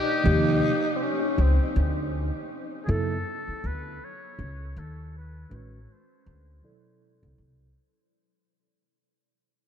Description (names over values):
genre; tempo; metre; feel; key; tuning
hip hop, jazz-hop; 80 BPM; 4/4; swing 58% on 16ths; unclear; A4 = 437 Hz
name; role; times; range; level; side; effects
trumpet with metal mute; melody; 0.0-7.0 s; G4 to C#5; -34 LUFS; left 1 dB; low-pass filter, tape echo
growling tenor saxophone; second line; 0.0-1.8 s; B#3 to D#4; -29 LUFS; left 2 dB; none
tine electric piano; accompaniment; 0.2-7.7 s; B2 to D5; -30 LUFS; right 2 dB; medium stereo tremolo, low-pass filter
upright bass; bass; 0.3-7.7 s; A1 to F#2; -26 LUFS; equal; none
room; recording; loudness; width
wet huge ambient reverb, RT60 7.6 s; dreamy mix soaked in reverb; -23 LUFS; side -9 dB against mid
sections
0.0-7.8 A section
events
fade-out 0.0-7.8; filter sweep 0.0-7.8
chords
0.3 D#13; 1.8 Dmaj9; 4.8 D#m7b5; 6.3 D7